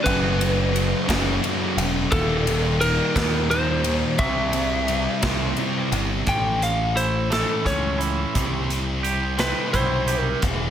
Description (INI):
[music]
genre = quiet-loud alternative rock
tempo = 58 BPM (dotted quarters)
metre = 6/8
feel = straight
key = unclear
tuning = A4 = 442 Hz
[part]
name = lightly driven lead guitar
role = melody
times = 0.0-10.4 s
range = A4 to G5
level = -25 LUFS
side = equal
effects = slapback echo
[part]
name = sludgy distorted guitar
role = riff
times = 0.0-10.7 s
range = Eb2 to C5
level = -26 LUFS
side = left 1 dB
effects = overdrive
[part]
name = sludgy distorted guitar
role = riff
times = 0.0-6.3 s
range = Eb2 to C5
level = -28 LUFS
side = equal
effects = overdrive
[part]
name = growling picked electric bass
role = bass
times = 0.1-10.7 s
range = Eb1 to Eb2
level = -26 LUFS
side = equal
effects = overdrive
[part]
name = big rock drum kit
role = drums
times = 0.1-10.6 s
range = hi-hat, kick drum, ride cymbal, snare drum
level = -27 LUFS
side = equal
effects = none
[part]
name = twangy electric guitar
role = arpeggios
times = 6.3-10.7 s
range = E2 to G4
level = -29 LUFS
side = right 7 dB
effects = none
[sound]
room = moderate large studio reverb, RT60 1.3 s, studio ambience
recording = none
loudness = -20 LUFS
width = side -9 dB against mid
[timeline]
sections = 0.0-6.3 A section; 6.3-10.7 B section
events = lead electric guitar solo 6.3-10.7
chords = 0.0 F#m; 2.1 Eb; 4.2 C; 6.3 A; 8.3 C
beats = | 0.04 1.08 | 2.11 3.15 | 4.19 5.22 | 6.26 7.31 | 8.35 9.39 | 10.43